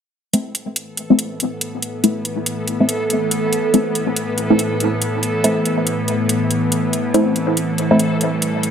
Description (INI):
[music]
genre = deep dubstep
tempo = 141 BPM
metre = 4/4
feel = swing 60% on 16ths, half-time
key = A minor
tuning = A4 = 436 Hz
[part]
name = bowed-like drone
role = sustained chords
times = 1.0-8.7 s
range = A2 to B3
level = -20 LUFS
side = left 1 dB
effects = built-in reverb
[part]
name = filtered dub chord stab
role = stabs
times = 0.3-8.0 s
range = A3 to E4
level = -18 LUFS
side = equal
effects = phaser, dub echo
[part]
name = electronic hi-hat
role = drums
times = 0.3-8.7 s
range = none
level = -21 LUFS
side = right 1 dB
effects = studio reverb
[part]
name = backwards swelling texture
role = texture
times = 1.6-8.7 s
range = A4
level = -25 LUFS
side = right 3 dB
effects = built-in reverb
[sound]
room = wet spring reverb, RT60 1.4 s, digital ambience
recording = echo-heavy mix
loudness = -16 LUFS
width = side -8 dB against mid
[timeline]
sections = 0.3-8.7 A section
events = filter sweep on synth stab 0.3-8.7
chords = 0.3 Am